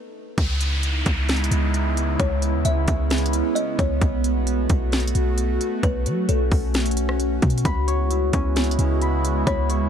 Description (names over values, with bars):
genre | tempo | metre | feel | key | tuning
hip hop, atmospheric cloud-rap | 132 BPM | 4/4 | half-time | C# minor | A4 = 439 Hz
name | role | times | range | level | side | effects
warbly tape-like pad | sustained chords | 0.7-9.9 s | C#3 to F#4 | -25 LUFS | right 1 dB | chorus, built-in reverb, phaser, sidechain pumping
clean 808-style bass | bass | 0.4-9.9 s | B1 to F#3 | -22 LUFS | equal | none
trap drum kit | drums | 0.4-9.8 s | hi-hat, kick drum, rim click, snare drum | -24 LUFS | equal | none
downlifter | sound effects | 0.4-4.0 s | none | -30 LUFS | equal | none
kalimba | melody | 2.2-6.7, 9.5-9.9 s | A4 to E5 | -31 LUFS | left 3 dB | low-pass filter, digital delay
Celtic harp | arpeggios | 7.7-9.9 s | C#3 to B5 | -28 LUFS | left 2 dB | low-pass filter, digital delay
room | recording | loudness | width
little or no reverb | none | -19 LUFS | side -8 dB against mid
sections
0.4-9.9 A section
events
stop 0.0-0.4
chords
0.4 C#m7; 4.0 Bsus2; 7.7 C#m7